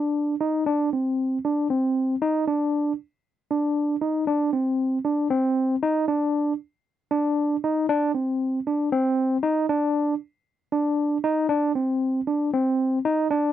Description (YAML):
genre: progressive instrumental, progressive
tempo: 233 BPM (eighths)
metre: 7/8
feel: straight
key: unclear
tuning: A4 = 441 Hz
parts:
  - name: barky tine electric piano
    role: solo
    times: 0.0-13.5 s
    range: C4 to Eb4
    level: -21 LUFS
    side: equal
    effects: auto-pan
room: light reverb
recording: dry, close 1970s-style studio recording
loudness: -22 LUFS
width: side -11 dB against mid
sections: 0.0-4.3 A section; 4.3-13.5 B section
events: none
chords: none